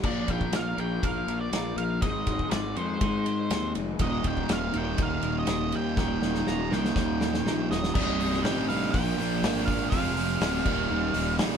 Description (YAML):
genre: quiet-loud alternative rock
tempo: 122 BPM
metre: 4/4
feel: straight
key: unclear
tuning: A4 = 440 Hz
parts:
  - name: twelve-string electric guitar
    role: arpeggios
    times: 0.0-7.9 s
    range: Eb2 to Bb4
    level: -37 LUFS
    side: right 3 dB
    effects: phaser
  - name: raw garage guitar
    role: riff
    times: 0.0-11.6 s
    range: C2 to Bb4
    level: -32 LUFS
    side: left 6 dB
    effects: overdrive
  - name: fuzz fingered electric bass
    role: bass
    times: 0.0-11.6 s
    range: C1 to Ab2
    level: -32 LUFS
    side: equal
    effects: overdrive
  - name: loose indie drum kit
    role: drums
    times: 0.0-11.5 s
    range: crash cymbal, hi-hat, kick drum, ride cymbal, snare drum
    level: -30 LUFS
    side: left 1 dB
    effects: none
  - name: octave-fuzz lead guitar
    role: melody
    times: 0.1-11.3 s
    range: C5 to Bb5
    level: -33 LUFS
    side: right 2 dB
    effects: distortion
  - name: thick fuzz guitar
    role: riff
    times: 4.0-11.6 s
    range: C2 to Bb4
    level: -30 LUFS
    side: right 6 dB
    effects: distortion
  - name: distorted electric guitar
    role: riff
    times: 8.0-11.6 s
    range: C2 to Bb3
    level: -35 LUFS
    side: equal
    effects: none
room: light reverb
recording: band playing live in one room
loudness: -25 LUFS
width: side -7 dB against mid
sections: 0.0-8.0 A section; 8.0-11.6 B section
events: drum fill 6.0-8.0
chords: 0.0 Bb; 2.0 Ab; 4.0 Eb; 8.0 Cm; 8.9 Bb; 9.9 Fm; 10.7 Eb